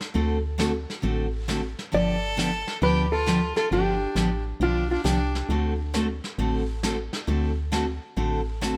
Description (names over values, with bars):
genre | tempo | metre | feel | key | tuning
country, western swing | 134 BPM | 4/4 | swing 66% on 8ths | unclear | A4 = 441 Hz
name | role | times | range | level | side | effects
vintage brush drum kit | drums | 0.0-8.8 s | brushed snare drum, hi-hat, snare drum | -36 LUFS | equal | none
picked steel-string acoustic guitar | accompaniment | 0.1-8.7 s | D3 to A4 | -30 LUFS | equal | none
woody FM bass | bass | 0.2-8.8 s | G1 to D2 | -30 LUFS | equal | none
hollow-body jazz guitar | melody | 1.9-5.5 s | F4 to D5 | -29 LUFS | equal | none
clear fiddle | second line | 1.9-5.5 s | D4 to A4 | -34 LUFS | equal | none
room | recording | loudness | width
light reverb | none | -26 LUFS | mono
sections
0.0-8.8 A section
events
none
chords
0.0 D7; 1.9 G9; 5.5 D7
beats
| 0.15 0.59 1.04 1.49 | 1.93 2.38 2.82 3.27 | 3.71 4.16 4.61 5.05 | 5.50 5.94 6.39 6.84 | 7.28 7.73 8.18 8.62